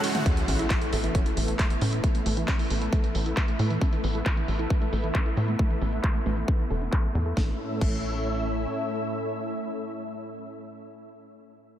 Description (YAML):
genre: uplifting trance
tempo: 135 BPM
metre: 4/4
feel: straight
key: A major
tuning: A4 = 440 Hz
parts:
  - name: analog string pad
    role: sustained chords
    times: 0.0-11.2 s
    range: A2 to E5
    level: -32 LUFS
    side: equal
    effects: ensemble chorus, sidechain pumping
  - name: wide unison pluck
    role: arpeggios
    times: 0.0-7.9 s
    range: A2 to A4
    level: -33 LUFS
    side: right 2 dB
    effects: sidechain pumping, diffuse ambient delay
  - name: techno drum kit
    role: drums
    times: 0.0-7.9 s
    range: crash cymbal, handclaps, hi-hat, ride cymbal, snare drum, toms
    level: -34 LUFS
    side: equal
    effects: sidechain pumping on hats, low-pass filter on hats, sidechain pumping on cymbals, low-pass filter on cymbals, sidechain pumping on toms, low-pass filter on toms, low-pass filter on snare, low-pass filter on room
  - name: electronic kick drum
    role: drums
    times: 0.3-7.9 s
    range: none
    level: -24 LUFS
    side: equal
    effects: none
  - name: sub drop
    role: sound effects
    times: 0.3-2.0 s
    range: none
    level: -34 LUFS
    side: equal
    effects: none
  - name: tight sequencer bass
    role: bass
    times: 0.5-8.7 s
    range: E1 to A2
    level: -28 LUFS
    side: equal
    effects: sidechain pumping
room: moderate huge ambient reverb, RT60 4.8 s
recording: dreamy mix soaked in reverb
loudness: -24 LUFS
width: side -11 dB against mid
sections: 0.3-7.4 A section; 7.4-10.9 B section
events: break 0.0; impact 0.3-2.0; filter sweep on drum 0.3-7.4; filter sweep on synth pluck 0.3-7.4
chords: 0.3 Asus2; 7.4 A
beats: | 0.26 0.70 1.15 1.59 | 2.04 2.48 2.93 3.37 | 3.81 4.26 4.70 5.15 | 5.59 6.04 6.48 6.93 | 7.37 7.82 8.26 8.70 | 9.15 9.59 10.04 10.48